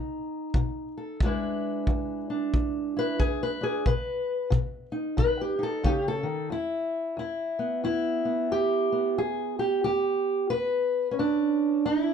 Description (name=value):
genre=acoustic country blues, solo or duo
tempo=90 BPM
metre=4/4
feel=swing 61% on 8ths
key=E mixolydian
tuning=A4 = 440 Hz
part: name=fingerpicked steel-string acoustic guitar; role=melody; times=0.0-12.1 s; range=E2 to B4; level=-26 LUFS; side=equal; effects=none
part: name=kick drum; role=drums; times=0.5-6.0 s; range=none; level=-27 LUFS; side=equal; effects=none
room=moderate small room reverb, RT60 0.5 s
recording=dark, warm production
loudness=-25 LUFS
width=side -7 dB against mid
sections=0.0-6.5 A section; 6.5-12.1 B section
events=steel-string acoustic guitar solo 0.0-6.5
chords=0.0 B; 1.2 E7; 3.9 B; 6.5 E5